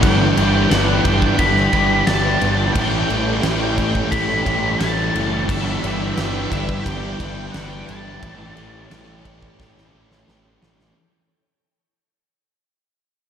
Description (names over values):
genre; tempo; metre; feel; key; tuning
rock, shoegaze and dream pop; 88 BPM; 4/4; straight; A mixolydian; A4 = 440 Hz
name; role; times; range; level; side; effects
octave-fuzz lead guitar; melody; 0.0-10.2 s; E5 to B5; -24 LUFS; left 1 dB; distortion, tape echo
phased string machine; sustained chords; 0.0-10.9 s; E4 to G5; -26 LUFS; left 1 dB; ensemble chorus, phaser
twelve-string electric guitar; arpeggios; 0.0-11.0 s; E3 to G4; -30 LUFS; left 1 dB; none
overdriven electric guitar; riff; 0.0-11.0 s; G2 to G4; -24 LUFS; right 8 dB; reverse reverb
thick fuzz guitar; riff; 0.0-11.0 s; G2 to A3; -24 LUFS; left 5 dB; distortion, analog chorus
fuzz picked electric bass; bass; 0.0-10.9 s; F#1 to A1; -23 LUFS; equal; overdrive
big rock drum kit; drums; 0.0-11.0 s; crash cymbal, kick drum, snare drum; -24 LUFS; equal; none
room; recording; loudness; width
wet lush hall reverb, RT60 1.7 s, small room ambience; dreamy mix soaked in reverb; -16 LUFS; side -8 dB against mid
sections
0.0-11.0 A section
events
fade-out 0.0-11.0; drum fill 9.6-11.0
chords
0.0 G6; 2.8 A7; 5.5 G6; 8.2 A7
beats
| 0.03 0.71 1.40 2.08 | 2.76 3.44 4.12 4.81 | 5.49 6.18 6.86 7.54 | 8.23 8.92 9.60 10.29